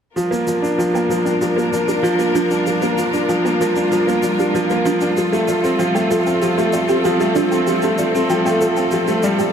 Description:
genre	piano and strings electronica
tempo	96 BPM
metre	4/4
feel	straight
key	G minor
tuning	A4 = 444 Hz
part	warm symphonic string section	sustained chords	0.2-9.5 s	G3 to Bb4	-22 LUFS	left 2 dB	none
part	soft round pluck	arpeggios	0.2-9.4 s	D4 to G5	-24 LUFS	right 3 dB	wide subtle chorus, ping-pong delay
part	warm upright piano	riff	0.2-9.5 s	F3 to D4	-17 LUFS	equal	ping-pong delay
part	shaker	drums	0.2-9.5 s	none	-35 LUFS	left 1 dB	none
room	moderate lush hall reverb, RT60 2.5 s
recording	high-pass filter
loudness	-15 LUFS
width	side -7 dB against mid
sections	0.2-9.5 A section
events	build-up 0.2-9.5; filter sweep on synth arpeggio sound 0.2-9.5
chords	0.2 Gm7; 5.2 Fadd9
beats	| 0.17 0.80 1.42 2.05 | 2.67 3.30 3.92 4.55 | 5.17 5.80 6.42 7.05 | 7.67 8.30 8.92

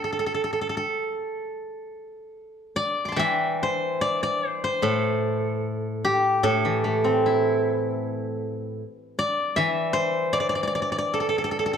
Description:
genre	chinese traditional, Chinese solo plucked strings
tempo	65-79 BPM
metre	4/4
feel	rubato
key	A yu mode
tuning	A4 = 439 Hz
part	steel-string zither	solo	0.0-11.8 s	A2 to D6	-23 LUFS	equal	none
room	moderate recital hall reverb, RT60 1.5 s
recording	dark, warm production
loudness	-22 LUFS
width	side -7 dB against mid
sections	0.0-1.5 A section; 1.5-11.8 B section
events	none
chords	none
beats	0.59 | 1.48 2.33 3.19 4.03 | 4.84 5.65 6.45 7.25 | 8.04 8.81 9.58 10.35 | 11.14

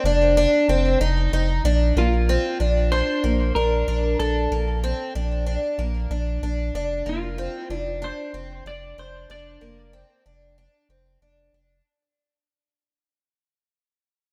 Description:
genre	dream pop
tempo	94 BPM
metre	4/4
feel	straight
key	Bb major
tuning	A4 = 440 Hz
part	clean electric guitar	melody	0.0-11.2 s	F4 to D5	-30 LUFS	equal	analog chorus, digital delay
part	picked twelve-string acoustic guitar	arpeggios	0.0-11.9 s	Bb3 to Eb4	-26 LUFS	equal	subtle chorus, digital delay
part	warm sub bass	bass	0.0-11.8 s	F1 to Bb1	-26 LUFS	equal	none
room	light reverb, small room ambience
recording	none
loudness	-22 LUFS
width	mono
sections	0.0-1.6 A section; 1.6-11.8 B section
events	fade-out 1.6-11.8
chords	0.0 F5; 1.6 Bb; 6.7 F5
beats	0.36 1.00 | 1.64 2.27 2.91 3.55 | 4.19 4.83 5.46 6.10 | 6.74 7.38 8.02 8.66 | 9.29 9.93 10.57 11.21

